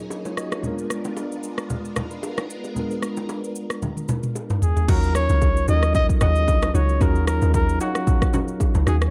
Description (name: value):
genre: amapiano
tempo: 113 BPM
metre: 4/4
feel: swing 55% on 16ths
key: Eb minor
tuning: A4 = 440 Hz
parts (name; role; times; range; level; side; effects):
- mellow tine electric piano; accompaniment; 0.0-9.1 s; Gb3 to F5; -31 LUFS; equal; none
- phased string machine; sustained chords; 0.0-4.8 s; Gb3 to Bb4; -37 LUFS; equal; ensemble chorus, phaser, sidechain pumping
- deep house drum kit; drums; 0.1-9.1 s; crash cymbal, kick drum, rim click, shaker, toms; -25 LUFS; equal; none
- bongos and congas; percussion; 0.1-8.9 s; none; -34 LUFS; equal; none
- trumpet with bucket mute; melody; 4.6-9.1 s; Gb4 to Eb5; -28 LUFS; equal; tape echo
- punchy chord stab; stabs; 4.9-9.0 s; Db4 to Gb4; -33 LUFS; equal; chorus, tape echo
- deep log drum bass; bass; 4.9-9.1 s; Db2 to Eb2; -22 LUFS; equal; none
room: little or no reverb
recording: dark, warm production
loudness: -22 LUFS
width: mono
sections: 0.0-4.9 A section; 4.9-9.1 B section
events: drum fill 3.8-4.9; drop 4.9-9.1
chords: 0.0 Ebm7; 0.6 Bb7b9; 4.9 Ebm7